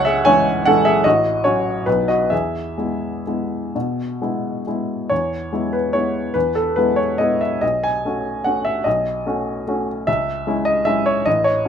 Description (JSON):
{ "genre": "classical, piano waltz", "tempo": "120-160 BPM", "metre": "3/4", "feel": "rubato", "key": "E major", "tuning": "A4 = 440 Hz", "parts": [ { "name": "warm baby grand piano", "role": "solo", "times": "0.0-11.7 s", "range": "A1 to G#5", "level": "-17 LUFS", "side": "equal", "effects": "none" } ], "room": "light reverb", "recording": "minimal, uncompressed stereo recording", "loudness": "-17 LUFS", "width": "side -8 dB against mid", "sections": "0.0-5.1 A section; 5.1-11.7 B section", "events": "none", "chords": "0.0 C#m; 1.0 F#m/A; 1.9 B; 2.3 E; 7.6 B9; 10.1 C#m" }